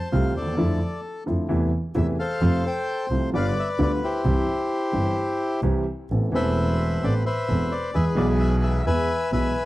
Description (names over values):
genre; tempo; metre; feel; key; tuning
tango; 131 BPM; 4/4; rubato; C major, A minor from 6.1 s; A4 = 440 Hz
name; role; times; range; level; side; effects
bandoneon; melody; 0.0-9.7 s; E4 to G#5; -26 LUFS; left 2 dB; none
warm upright piano; accompaniment; 0.1-9.5 s; E1 to A4; -25 LUFS; equal; none
dark double bass; bass; 0.1-9.5 s; E1 to F2; -24 LUFS; right 1 dB; none
room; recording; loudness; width
small room reverb; dry, close 1970s-style studio recording; -21 LUFS; side -17 dB against mid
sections
0.0-6.1 A section; 6.1-9.7 B section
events
none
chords
0.0 Fadd9; 0.6 Dmadd9/F; 1.5 Am/E; 2.4 F; 3.3 G7; 4.2 C; 6.1 Amadd9; 7.9 E